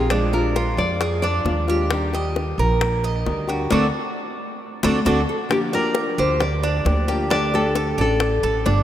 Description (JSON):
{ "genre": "latin, Cuban son and guajira", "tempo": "133 BPM", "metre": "4/4", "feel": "straight", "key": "G minor", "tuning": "A4 = 439 Hz", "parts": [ { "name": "nylon-string guitar", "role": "melody", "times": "0.0-1.6, 5.3-8.4 s", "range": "G4 to D5", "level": "-24 LUFS", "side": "left 2 dB", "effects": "none" }, { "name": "nylon-string guitar", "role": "accompaniment", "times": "0.0-8.8 s", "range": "D3 to G4", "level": "-25 LUFS", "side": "left 2 dB", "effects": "none" }, { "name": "Cuban tres", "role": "arpeggios", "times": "0.0-8.8 s", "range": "D4 to Eb5", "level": "-25 LUFS", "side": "right 4 dB", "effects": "none" }, { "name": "upright bass", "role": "bass", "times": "0.0-8.8 s", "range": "G1 to F2", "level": "-23 LUFS", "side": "right 1 dB", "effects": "none" }, { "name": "bongos", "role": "percussion", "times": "0.1-8.8 s", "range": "none", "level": "-29 LUFS", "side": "left 5 dB", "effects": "none" } ], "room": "wet cathedral reverb, RT60 5.3 s", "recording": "in a vast, echoing space", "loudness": "-18 LUFS", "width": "side -11 dB against mid", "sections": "0.0-5.5 A section; 5.5-8.8 B section", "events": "band accent 3.7-5.5", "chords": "0.1 Bb7; 1.9 Ebmaj7; 3.7 D7; 5.5 Gm7; 7.3 Dsus4", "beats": "| 0.11 0.56 1.01 1.46 | 1.91 2.36 2.81 3.27 | 3.72 4.17 4.62 5.07 | 5.52 5.97 6.42 6.86 | 7.31 7.76 8.21 8.66" }